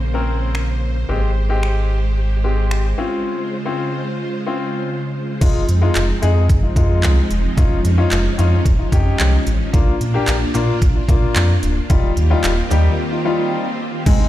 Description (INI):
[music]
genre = dance-pop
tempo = 111 BPM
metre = 4/4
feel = straight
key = unclear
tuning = A4 = 440 Hz
[part]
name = string machine, violas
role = sustained chords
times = 0.0-14.3 s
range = Db3 to C5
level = -24 LUFS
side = right 1 dB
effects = ensemble chorus, sidechain pumping
[part]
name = sub bass with octave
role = bass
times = 0.0-14.3 s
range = D1 to Bb2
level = -17 LUFS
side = equal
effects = sidechain pumping
[part]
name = clear baby grand piano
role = accompaniment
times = 0.1-14.3 s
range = G3 to Bb4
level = -23 LUFS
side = left 4 dB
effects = sidechain pumping
[part]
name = pop drum kit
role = drums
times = 0.5-14.2 s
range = crash cymbal, finger snaps, handclaps, hi-hat, kick drum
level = -18 LUFS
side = equal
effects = none
[part]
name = group handclap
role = percussion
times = 10.3-12.8 s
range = none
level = -34 LUFS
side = right 6 dB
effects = none
[part]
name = swell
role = sound effects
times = 12.6-14.1 s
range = none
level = -29 LUFS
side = equal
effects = none
[part]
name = soft round pluck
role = arpeggios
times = 14.1-14.3 s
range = Ab3 to Eb4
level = -22 LUFS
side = right 8 dB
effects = chorus, sidechain pumping
[sound]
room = little or no reverb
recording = played on a big sound system in a bare room, stone room reverb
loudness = -15 LUFS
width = side -14 dB against mid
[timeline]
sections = 0.0-5.4 A section; 5.4-14.1 B section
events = break 3.3-5.4, 13.0-14.1; swell 12.6-14.1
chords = 0.0 Bbmadd9; 1.1 Abmaj7; 3.0 Dbmaj7; 5.4 Fm7; 7.6 Dbadd9/F; 9.7 Bb; 11.9 Ebadd9